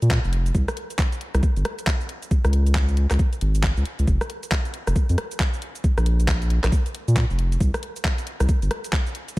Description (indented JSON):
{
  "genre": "UK garage, two-step garage",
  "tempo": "136 BPM",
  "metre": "4/4",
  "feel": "swing 61% on 16ths",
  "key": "unclear",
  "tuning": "A4 = 440 Hz",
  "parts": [
    { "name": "saturated sub bass", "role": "bass", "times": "0.0-8.7 s", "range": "F1 to Bb2", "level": "-19 LUFS", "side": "equal", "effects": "none" },
    { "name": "garage drum kit", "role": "drums", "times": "0.0-9.4 s", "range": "cabasa, handclaps, hi-hat, rim click", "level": "-29 LUFS", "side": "equal", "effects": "studio reverb" },
    { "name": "electronic kick drum", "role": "drums", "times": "0.1-9.4 s", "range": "none", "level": "-22 LUFS", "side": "equal", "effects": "overdrive, studio reverb" }
  ],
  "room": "digital ambience",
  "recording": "none",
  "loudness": "-20 LUFS",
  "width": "side -20 dB against mid",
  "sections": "0.0-9.4 A section",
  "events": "none",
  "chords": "none"
}